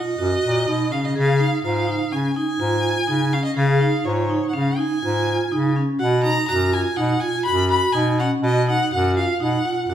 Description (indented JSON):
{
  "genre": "contemporary instrumental, chamber music in an uneven meter",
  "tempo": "124 BPM",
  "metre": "5/4",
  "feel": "straight",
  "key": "unclear",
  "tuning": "A4 = 440 Hz",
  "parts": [
    { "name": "rich violin", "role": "melody", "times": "0.0-9.9 s", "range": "C#5 to B5", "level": "-24 LUFS", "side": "left 1 dB", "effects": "none" },
    { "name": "vibraphone with medium hard mallets", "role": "arpeggios", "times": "0.0-9.9 s", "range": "C#4 to G#4", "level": "-22 LUFS", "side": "right 2 dB", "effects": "none" },
    { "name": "clear bass clarinet", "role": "bass", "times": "0.2-9.9 s", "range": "F#2 to C#3", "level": "-22 LUFS", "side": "left 1 dB", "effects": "none" }
  ],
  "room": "moderate recital hall reverb, RT60 1.3 s",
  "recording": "none",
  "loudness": "-18 LUFS",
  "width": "side -10 dB against mid",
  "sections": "0.0-9.9 A section",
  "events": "none",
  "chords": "0.0 Bmaj7; 1.2 C#; 6.0 B",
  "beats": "0.18 0.67 | 1.15 1.64 2.12 2.61 3.09 | 3.58 4.06 4.54 5.03 5.51 | 6.00 6.48 6.97 7.45 7.94 | 8.43 8.91 9.40 9.88"
}